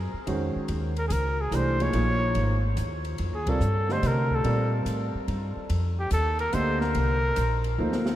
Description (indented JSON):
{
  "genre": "modal jazz",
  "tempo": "144 BPM",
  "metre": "3/4",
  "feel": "swing 67% on 8ths",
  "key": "unclear",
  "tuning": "A4 = 440 Hz",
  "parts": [
    { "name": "upright bass", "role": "bass", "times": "0.0-8.2 s", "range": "Ab1 to C3", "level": "-27 LUFS", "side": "equal", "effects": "none" },
    { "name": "warm concert grand piano", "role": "accompaniment", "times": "0.3-8.2 s", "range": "D3 to Eb5", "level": "-30 LUFS", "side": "right 1 dB", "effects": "none" },
    { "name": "open jazz drum kit", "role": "drums", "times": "0.3-8.2 s", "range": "hi-hat, kick drum, ride cymbal, snare drum", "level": "-37 LUFS", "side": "left 1 dB", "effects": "none" },
    { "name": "breathy trumpet", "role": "melody", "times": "1.0-7.7 s", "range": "G4 to Db5", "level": "-29 LUFS", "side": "equal", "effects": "none" }
  ],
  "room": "moderate cathedral reverb, RT60 5.8 s",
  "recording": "in a vast, echoing space",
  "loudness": "-24 LUFS",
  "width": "side -13 dB against mid",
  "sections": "0.0-8.2 A section",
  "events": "band accent 3.4; drum fill 7.8-8.2",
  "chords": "0.0 Eb9sus4; 3.2 F9sus4"
}